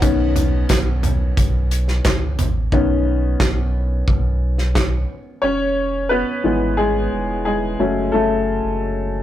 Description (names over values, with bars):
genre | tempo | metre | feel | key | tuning
piano-driven pop | 89 BPM | 4/4 | straight | unclear | A4 = 441 Hz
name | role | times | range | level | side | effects
bright upright piano | accompaniment | 0.0-9.2 s | D#3 to C#5 | -20 LUFS | left 2 dB | none
warm sub bass | bass | 0.0-9.2 s | E1 to C#2 | -21 LUFS | right 1 dB | none
natural country drum kit | drums | 0.0-4.9 s | handclaps, hi-hat, kick drum, snare drum, toms | -19 LUFS | equal | none
room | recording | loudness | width
light reverb | rough rehearsal-room recording, warm saturation | -16 LUFS | side -12 dB against mid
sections
0.0-5.4 A section; 5.4-9.2 B section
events
upright piano solo 0.0-5.4, 5.4-9.2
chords
0.0 Badd9; 5.4 E; 7.8 F#m